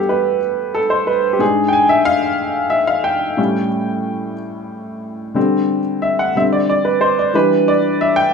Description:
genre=gospel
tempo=61 BPM (dotted quarters)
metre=6/8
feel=straight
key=G major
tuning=A4 = 440 Hz
part: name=warm upright piano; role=solo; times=0.0-8.3 s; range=G2 to Ab5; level=-14 LUFS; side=equal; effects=none
room=moderate large studio reverb, RT60 1.2 s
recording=band playing live in one room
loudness=-14 LUFS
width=side -5 dB against mid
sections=0.0-8.3 A section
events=upright piano solo 0.0-8.3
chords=0.0 Gmaj7; 1.4 Fm69/Ab; 3.4 A7; 5.4 D7sus4; 7.3 Em7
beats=0.42 | 1.41 2.40 | 3.38 4.37 | 5.36 6.35 | 7.34 8.33

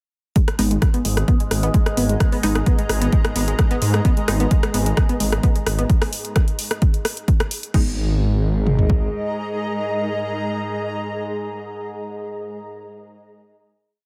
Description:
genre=driving peak-time techno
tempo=130 BPM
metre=4/4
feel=straight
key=G# minor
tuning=A4 = 440 Hz
part: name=tight sequenced synth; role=riff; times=0.4-8.0 s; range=G#3 to B3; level=-29 LUFS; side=equal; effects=chorus, tube saturation, sidechain pumping, delay
part: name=overtone-sweeping drone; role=drone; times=0.8-12.0 s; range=G#2 to G#3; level=-33 LUFS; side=equal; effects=chorus, built-in reverb, sidechain pumping
part: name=punchy analog drum machine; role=drums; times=0.4-9.0 s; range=kick drum, toms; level=-19 LUFS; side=equal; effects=overdrive
part: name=punchy analog drum machine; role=drums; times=0.4-7.8 s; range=crash cymbal, hi-hat, rim click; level=-28 LUFS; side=equal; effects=overdrive, sidechain pumping on hats, sidechain pumping on cymbals
part: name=granular cloud pad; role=texture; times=1.3-12.1 s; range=G#4 to A#5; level=-32 LUFS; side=equal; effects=built-in reverb, sidechain pumping
part: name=wavetable chord stab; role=stabs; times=0.6-4.4, 7.7-12.0 s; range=G#3 to D#4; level=-29 LUFS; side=equal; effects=sidechain pumping, dub echo
part: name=detuned saw bass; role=bass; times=0.6-9.1 s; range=G#1 to G#2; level=-23 LUFS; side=equal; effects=tube saturation, sidechain pumping
room=little or no reverb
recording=none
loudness=-20 LUFS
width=mono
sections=0.4-7.7 groove; 7.7-11.4 final chord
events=none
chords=0.4 G#m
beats=| 0.36 0.82 1.28 1.74 | 2.20 2.67 3.13 3.59 | 4.05 4.51 4.97 5.43 | 5.90 6.36 6.82 7.28 | 7.74 8.20 8.66 9.13 | 9.59 10.05 10.51 10.97

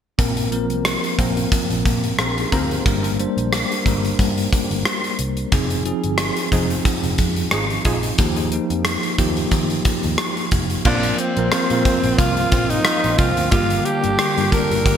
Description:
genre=1980s-style pop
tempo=90 BPM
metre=4/4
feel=swing 55% on 16ths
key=unclear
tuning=A4 = 441 Hz
part: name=bell-like tine electric piano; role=accompaniment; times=0.2-15.0 s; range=D3 to C5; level=-22 LUFS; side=equal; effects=fast stereo tremolo
part: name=vintage muted picked electric bass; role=bass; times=0.2-15.0 s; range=F1 to Eb3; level=-24 LUFS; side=equal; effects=none
part: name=gated 80s drum kit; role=drums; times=0.2-15.0 s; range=crash cymbal, hi-hat, kick drum, rim click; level=-20 LUFS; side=equal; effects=gated reverb
part: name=funky polysynth comp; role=stabs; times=1.2-8.1 s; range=F3 to Bb4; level=-29 LUFS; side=equal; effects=chorus, ping-pong delay
part: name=breathy alto saxophone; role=melody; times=10.9-15.0 s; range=C4 to Bb4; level=-21 LUFS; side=equal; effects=none
part: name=direct-recorded clean electric guitar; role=riff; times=10.9-15.0 s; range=Bb3 to G4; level=-27 LUFS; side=right 5 dB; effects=ensemble chorus
room=moderate plate reverb, RT60 2.2 s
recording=bright 1980s-style digital production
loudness=-17 LUFS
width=side -8 dB against mid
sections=0.2-10.9 A section; 10.9-15.0 B section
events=none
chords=0.2 Bbsus2; 2.9 Gm; 5.5 Fm7; 8.2 Ebadd9; 10.9 Bbsus2; 13.5 Gm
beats=| 0.19 0.86 1.52 2.19 | 2.86 3.52 4.19 4.86 | 5.52 6.19 6.86 7.52 | 8.19 8.86 9.52 10.19 | 10.86 11.52 12.19 12.86 | 13.52 14.19 14.86

